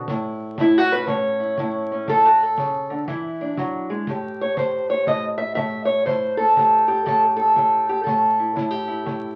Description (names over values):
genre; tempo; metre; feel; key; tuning
acoustic country blues, solo or duo; 120 BPM; 4/4; swing 65% on 8ths; A mixolydian; A4 = 438 Hz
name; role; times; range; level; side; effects
fingerpicked steel-string acoustic guitar; melody; 0.0-9.4 s; A2 to E5; -21 LUFS; equal; none
kick drum; drums; 0.1-9.2 s; none; -37 LUFS; equal; none
room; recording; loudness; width
wet studio reverb, RT60 0.8 s; very old 78 rpm record, vinyl crackle; -21 LUFS; mono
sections
0.0-4.1 A section; 4.1-9.4 B section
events
steel-string acoustic guitar solo 0.0-4.1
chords
0.1 A; 3.1 E7(no3); 4.1 A7(no3)